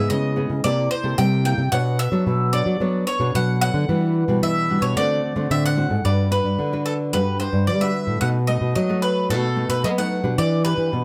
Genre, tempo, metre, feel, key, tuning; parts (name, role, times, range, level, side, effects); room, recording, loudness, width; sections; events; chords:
samba and choro; 111 BPM; 4/4; straight; D major, G major from 6.1 s; A4 = 440 Hz
bowl-back mandolin; melody; 0.0-11.0 s; A4 to G5; -27 LUFS; equal
nylon-string guitar; accompaniment; 0.0-11.0 s; A2 to C#5; -28 LUFS; equal
nylon-string guitar; bass; 0.0-11.0 s; G2 to B3; -23 LUFS; equal
little or no reverb; close, detailed microphones; -21 LUFS; mono
0.0-6.1 A section; 6.1-11.0 B section
0.0 C#m7; 0.6 C6; 1.7 Bm9; 3.9 Em9; 5.0 D7; 6.1 Gmaj7; 8.2 B7; 10.4 Em7